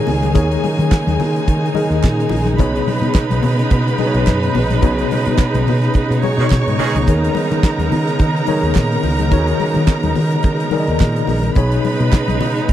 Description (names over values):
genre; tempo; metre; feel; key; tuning
disco; 107 BPM; 4/4; swing 56% on 16ths; unclear; A4 = 440 Hz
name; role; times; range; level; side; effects
clear studio string section; second line; 0.0-12.7 s; G#4 to C#6; -23 LUFS; right 2 dB; none
mellow tine electric piano; accompaniment; 0.0-12.7 s; B2 to D#5; -19 LUFS; left 3 dB; medium stereo tremolo
warm studio string section; sustained chords; 0.0-12.7 s; C#3 to D#4; -22 LUFS; right 4 dB; none
fingered electric bass; bass; 0.1-12.7 s; A#1 to D#3; -19 LUFS; right 1 dB; none
damped 70s drum kit; drums; 0.1-12.7 s; hi-hat, kick drum, snare drum; -14 LUFS; equal; none
congas; percussion; 0.1-12.7 s; none; -25 LUFS; left 6 dB; none
group handclap; percussion; 0.9-12.3 s; none; -30 LUFS; right 25 dB; none
warm horn section; stabs; 6.4-7.0 s; D#3 to G#4; -20 LUFS; right 5 dB; none
room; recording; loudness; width
little or no reverb; dry, close 1970s-style studio recording; -13 LUFS; side -12 dB against mid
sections
0.0-12.7 A section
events
band accent 4.8-7.1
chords
0.0 D#7sus4; 2.6 B69; 7.1 D#7sus4; 11.6 B69